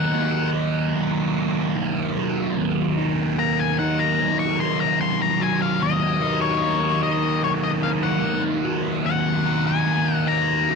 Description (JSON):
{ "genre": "rock", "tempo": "74 BPM", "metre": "4/4", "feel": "straight", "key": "Eb minor", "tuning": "A4 = 440 Hz", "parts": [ { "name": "octave-fuzz lead guitar", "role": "melody", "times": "0.0-10.8 s", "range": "Db5 to Db6", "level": "-24 LUFS", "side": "left 10 dB", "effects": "distortion, tape echo" }, { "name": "thick fuzz guitar", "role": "riff", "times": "0.0-10.8 s", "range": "Eb2 to Eb4", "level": "-21 LUFS", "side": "right 2 dB", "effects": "distortion, phaser" } ], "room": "moderate plate reverb, RT60 2.5 s", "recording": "lossy compression artefacts", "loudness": "-19 LUFS", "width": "side -4 dB against mid", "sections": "0.0-10.8 A section", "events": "lead electric guitar solo 0.0-10.8", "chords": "0.0 Ebm" }